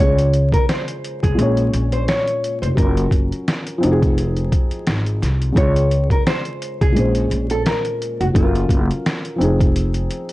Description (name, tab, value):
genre	lo-fi hip hop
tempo	86 BPM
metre	4/4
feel	swing 55% on 16ths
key	Db major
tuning	A4 = 440 Hz
part	nylon-string guitar	melody	0.0-9.4 s	F4 to Db5	-23 LUFS	equal	low-pass filter
part	felt-muted upright piano	accompaniment	0.0-10.3 s	Bb2 to Db5	-22 LUFS	equal	low-pass filter
part	upright bass	bass	0.0-10.1 s	F1 to Db2	-19 LUFS	equal	none
part	boom bap sampler-style drum kit	drums	0.0-10.3 s	hi-hat, kick drum, snare drum	-19 LUFS	equal	none
room	light reverb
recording	dry, gritty hardware recording, vinyl crackle, nothing above 10.8 kHz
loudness	-16 LUFS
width	side -18 dB against mid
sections	0.0-10.3 A section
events	none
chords	0.0 Dbmaj7; 1.4 Bbm7; 2.8 Gbmaj7; 3.8 Fm7; 5.6 Dbmaj7; 7.0 Bbm9; 8.4 Gbmaj7; 9.4 Fm7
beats	0.68 1.37 2.07 | 2.77 3.47 4.17 4.86 | 5.56 6.26 6.96 7.65 | 8.35 9.05 9.75